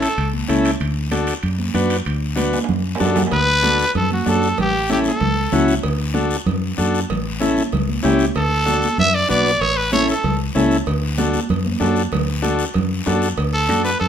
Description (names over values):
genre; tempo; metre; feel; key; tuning
latin, cumbia; 191 BPM; 4/4; straight; D major; A4 = 440 Hz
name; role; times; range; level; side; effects
growling trumpet; melody; 0.0-0.3, 3.3-5.7, 8.4-10.4, 13.5-14.1 s; F#4 to E5; -18 LUFS; right 1 dB; none
combo organ; accompaniment; 0.0-13.9 s; C#4 to B4; -21 LUFS; left 2 dB; none
fingered electric bass; bass; 0.0-14.1 s; A1 to F#2; -22 LUFS; equal; none
guiro; percussion; 0.0-14.1 s; none; -31 LUFS; left 6 dB; none
timbales and cowbell; percussion; 0.0-14.1 s; none; -30 LUFS; right 5 dB; none
congas; percussion; 0.2-14.1 s; none; -24 LUFS; right 3 dB; none
room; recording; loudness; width
light reverb; minimal, uncompressed stereo recording; -16 LUFS; side -9 dB against mid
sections
0.0-3.3 A section; 3.3-13.4 A section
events
drum fill 2.5-3.3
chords
0.0 A; 0.8 D; 4.6 A7; 5.8 D; 7.1 A7; 8.4 D; 9.6 A; 10.9 D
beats
0.18 0.49 | 0.81 1.12 1.44 1.75 | 2.07 2.38 2.69 3.01 | 3.32 3.64 3.95 4.27 | 4.58 4.90 5.21 5.52 | 5.84 6.15 6.47 6.78 | 7.09 7.41 7.72 8.04 | 8.35 8.67 8.98 9.29 | 9.61 9.92 10.24 10.55 | 10.87 11.18 11.49 11.81 | 12.12 12.44 12.75 13.06 | 13.38 13.69 14.01